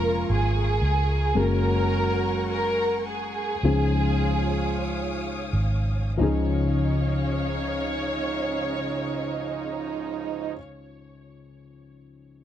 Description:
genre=pop ballad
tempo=44-58 BPM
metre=4/4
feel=straight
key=Db major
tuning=A4 = 440 Hz
part: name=dark studio violin section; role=melody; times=0.0-10.6 s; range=Ab4 to Db5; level=-29 LUFS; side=right 1 dB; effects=none
part: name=clear French horn section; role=second line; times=0.0-10.5 s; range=Ab2 to Gb4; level=-32 LUFS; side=right 9 dB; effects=none
part: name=felt-muted upright piano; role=accompaniment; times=0.0-12.4 s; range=Db2 to Ab4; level=-28 LUFS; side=left 5 dB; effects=none
part: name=warm studio string section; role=sustained chords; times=0.0-10.6 s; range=Db3 to Eb6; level=-35 LUFS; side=equal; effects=none
part: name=vintage muted fingered electric bass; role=bass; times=0.0-10.6 s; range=F1 to Db2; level=-26 LUFS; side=right 1 dB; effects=none
room=light reverb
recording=dry, close 1970s-style studio recording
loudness=-23 LUFS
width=side -10 dB against mid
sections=0.0-6.2 A section; 6.2-11.7 B section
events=slowing down 0.0-6.2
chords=0.0 Bbm7/F; 1.4 Gbadd9; 3.6 Dbadd9

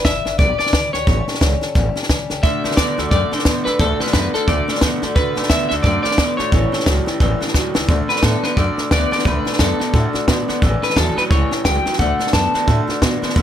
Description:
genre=rockabilly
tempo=176 BPM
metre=4/4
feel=swing 60% on 8ths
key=D major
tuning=A4 = 440 Hz
part: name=electric guitar at the edge of break-up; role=melody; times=0.0-12.8 s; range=A4 to A5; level=-21 LUFS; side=equal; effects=wide subtle chorus, tape echo
part: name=picked old ladder-braced acoustic guitar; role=accompaniment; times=0.0-13.4 s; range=A2 to B4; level=-26 LUFS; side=left 6 dB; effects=none
part: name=upright bass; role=bass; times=0.0-13.4 s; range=G1 to B2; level=-21 LUFS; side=equal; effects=none
part: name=compact cocktail drum kit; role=drums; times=0.0-13.4 s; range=hi-hat, kick drum, snare drum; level=-18 LUFS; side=equal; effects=none
part: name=electric guitar through a small old amp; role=riff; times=2.4-13.4 s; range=A2 to B3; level=-22 LUFS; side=right 2 dB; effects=none
room=light reverb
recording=none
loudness=-15 LUFS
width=side -10 dB against mid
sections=0.0-7.9 A section; 7.9-13.4 B section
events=drum fill 7.5-7.9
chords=0.0 G; 1.1 A7; 2.4 D; 6.5 A7; 7.9 D; 10.6 A7; 12.0 D

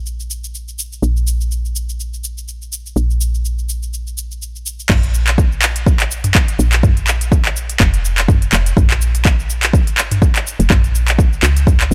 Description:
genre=afro house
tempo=124 BPM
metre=4/4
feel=swing 56% on 16ths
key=Bb minor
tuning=A4 = 440 Hz
part: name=woody FM bass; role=bass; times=0.0-11.9 s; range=F1 to Db2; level=-20 LUFS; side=equal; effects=sidechain pumping
part: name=afro-pop drum kit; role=drums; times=0.1-11.9 s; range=crash cymbal, handclaps, hi-hat, shaker, toms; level=-20 LUFS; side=equal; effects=none
part: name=electronic kick drum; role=drums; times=4.9-11.8 s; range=none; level=-15 LUFS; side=equal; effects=overdrive
room=little or no reverb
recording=dark, warm production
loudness=-15 LUFS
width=mono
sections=0.0-4.9 A section; 4.9-11.9 B section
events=drop 4.9-11.9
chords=none

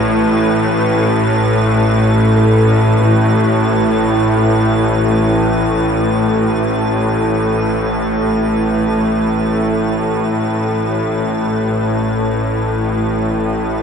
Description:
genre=dark ambient drone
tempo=free time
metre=none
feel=none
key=unclear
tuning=A4 = 440 Hz
part: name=dark concert grand piano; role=arpeggios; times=0.0-13.8 s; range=A2 to A4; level=-24 LUFS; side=equal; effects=none
part: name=bowed-like drone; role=drone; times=0.0-13.8 s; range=A1 to A2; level=-13 LUFS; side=equal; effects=built-in reverb
part: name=icy glass pad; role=texture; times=0.0-13.8 s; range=B4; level=-26 LUFS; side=right 4 dB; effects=chorus, built-in reverb
room=moderate plate reverb, RT60 2.7 s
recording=dreamy mix soaked in reverb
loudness=-12 LUFS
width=side -6 dB against mid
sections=0.0-13.8 A section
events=fade-out on ambient pad 0.0-13.8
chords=0.0 Asus2

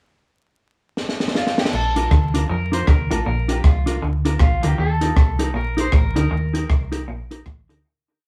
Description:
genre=ska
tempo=157 BPM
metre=4/4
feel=swing 60% on 8ths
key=Bb major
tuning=A4 = 440 Hz
part: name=compact cocktail drum kit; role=drums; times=1.0-7.8 s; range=crash cymbal, hi-hat, kick drum, rim click, snare drum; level=-20 LUFS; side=equal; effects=none
part: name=electric guitar at the edge of break-up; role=melody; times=1.4-7.4 s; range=F4 to C5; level=-29 LUFS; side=equal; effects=none
part: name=semi-hollow electric guitar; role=riff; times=1.7-7.8 s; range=A2 to F3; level=-31 LUFS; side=equal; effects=dub echo
part: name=hollow-body short-scale fingered electric bass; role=bass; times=1.7-7.8 s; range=A1 to F2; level=-25 LUFS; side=equal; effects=none
part: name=mellow electric guitar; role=accompaniment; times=2.0-7.8 s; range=D4 to Bb4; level=-28 LUFS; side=equal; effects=dub echo
room=moderate studio reverb, RT60 0.6 s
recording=band playing live in one room, vinyl crackle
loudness=-19 LUFS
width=mono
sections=0.2-1.7 pickup bar; 1.7-7.8 head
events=drum fill 1.0-1.7; fade-out 6.3-7.8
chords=0.2 N.C.; 1.7 Bb; 4.8 Eb

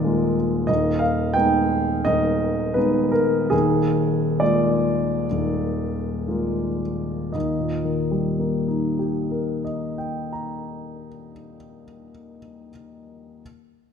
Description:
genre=classical, romantic character piece for solo piano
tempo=53-93 BPM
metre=4/4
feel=rubato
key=Eb major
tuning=A4 = 440 Hz
part: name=warm grand piano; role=solo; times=0.0-13.4 s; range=Eb1 to Bb5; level=-21 LUFS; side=equal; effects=none
room=moderate scoring stage reverb, RT60 1.8 s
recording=minimal, uncompressed stereo recording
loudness=-20 LUFS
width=side -7 dB against mid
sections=0.0-7.3 A section; 7.3-11.2 B section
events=slowing down 0.0-7.3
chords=0.0 Bb7/Eb; 0.7 Abm/Eb; 3.5 Bb7/Eb; 7.3 Eb

